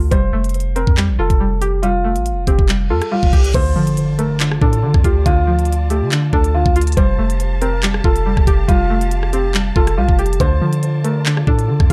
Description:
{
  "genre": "hip hop, drill",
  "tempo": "140 BPM",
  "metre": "4/4",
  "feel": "half-time",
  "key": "D minor",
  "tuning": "A4 = 442 Hz",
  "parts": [
    { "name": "string-like resonator pluck", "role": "accompaniment", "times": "0.0-11.9 s", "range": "D3 to G4", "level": "-25 LUFS", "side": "equal", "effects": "chorus, low-pass filter" },
    { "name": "long sustained 808-style bass", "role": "bass", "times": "0.0-11.9 s", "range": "F1 to D3", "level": "-20 LUFS", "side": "equal", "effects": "none" },
    { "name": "dark grand piano", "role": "melody", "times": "0.1-11.9 s", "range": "F4 to C5", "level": "-24 LUFS", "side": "equal", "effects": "low-pass filter, digital delay" },
    { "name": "drill drum kit", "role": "drums", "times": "0.1-11.9 s", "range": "crash cymbal, handclaps, hi-hat, kick drum, rim click", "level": "-18 LUFS", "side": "equal", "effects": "none" },
    { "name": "reverse cymbal and impact", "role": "sound effects", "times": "2.9-5.3 s", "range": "none", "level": "-32 LUFS", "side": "equal", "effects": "none" },
    { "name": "warm symphonic string section", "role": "sustained chords", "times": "3.5-11.9 s", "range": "F4 to A5", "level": "-34 LUFS", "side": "equal", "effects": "none" }
  ],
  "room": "digital ambience",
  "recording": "dark, warm production",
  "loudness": "-16 LUFS",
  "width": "mono",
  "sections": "0.0-3.5 A section; 3.5-11.9 B section",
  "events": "reverse cymbal 2.9-3.5; impact 3.5-5.3",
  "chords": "0.1 Fadd9; 3.5 Dm; 7.0 Fadd9; 10.4 Dm"
}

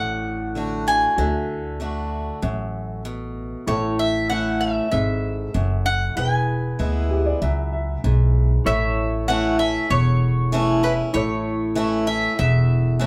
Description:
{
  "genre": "honky-tonk and classic country",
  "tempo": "96 BPM",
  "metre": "4/4",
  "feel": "straight",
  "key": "A major",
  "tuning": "A4 = 440 Hz",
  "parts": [
    { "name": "mandolin", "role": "melody", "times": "0.0-13.1 s", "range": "B4 to G#5", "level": "-26 LUFS", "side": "equal", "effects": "plate reverb" },
    { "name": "clear grand piano", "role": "accompaniment", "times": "0.0-13.1 s", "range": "E4 to E5", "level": "-35 LUFS", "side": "equal", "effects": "none" },
    { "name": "picked swing-style acoustic guitar", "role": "accompaniment", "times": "0.0-13.1 s", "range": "E2 to F#4", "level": "-28 LUFS", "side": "equal", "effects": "none" },
    { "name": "upright bass", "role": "bass", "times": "0.0-13.1 s", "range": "E1 to D2", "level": "-25 LUFS", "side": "equal", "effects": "none" },
    { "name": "dark upright piano", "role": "second line", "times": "7.1-8.5 s", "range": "G4 to E5", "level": "-30 LUFS", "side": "equal", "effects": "none" },
    { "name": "pedal steel guitar", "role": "sustained chords", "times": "8.7-13.1 s", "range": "C#5 to E5", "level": "-31 LUFS", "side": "equal", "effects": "none" }
  ],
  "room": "wet studio ambience, RT60 0.5 s",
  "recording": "heard from further back in the room",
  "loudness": "-21 LUFS",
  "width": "mono",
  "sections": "0.0-8.7 A section; 8.7-13.1 B section",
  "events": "none",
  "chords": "0.0 D; 3.7 A; 6.2 E; 8.7 A"
}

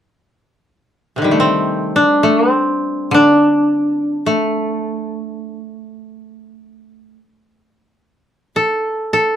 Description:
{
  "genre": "japanese traditional, Japanese chamber music",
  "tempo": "free time",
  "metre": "none",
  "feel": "none",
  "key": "D in sen",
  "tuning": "A4 = 440 Hz",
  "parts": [
    { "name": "koto", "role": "melody", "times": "1.2-9.4 s", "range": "C3 to A4", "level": "-14 LUFS", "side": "equal", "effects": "none" },
    { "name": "koto", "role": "accompaniment", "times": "3.1-6.2 s", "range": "D3", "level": "-19 LUFS", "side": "left 1 dB", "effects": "none" }
  ],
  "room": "moderate studio reverb, RT60 0.5 s",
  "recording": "dark, warm production",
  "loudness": "-13 LUFS",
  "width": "side -10 dB against mid",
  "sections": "0.3-9.4 A section",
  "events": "none",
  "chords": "none"
}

